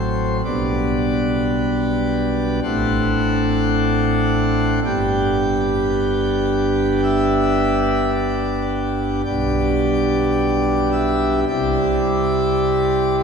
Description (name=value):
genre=classical, chorale-style piece for pipe organ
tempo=54 BPM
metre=4/4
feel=rubato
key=G major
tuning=A4 = 439 Hz
part: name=pipe organ, plenum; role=solo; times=0.0-13.2 s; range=G1 to G5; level=-17 LUFS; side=equal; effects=none
room=wet cathedral reverb, RT60 4.1 s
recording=recorded in a church or concert hall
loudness=-17 LUFS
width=side -6 dB against mid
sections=0.0-13.2 A section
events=none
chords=0.5 G/B; 2.6 D7/A; 4.8 G; 9.3 G/B; 11.5 C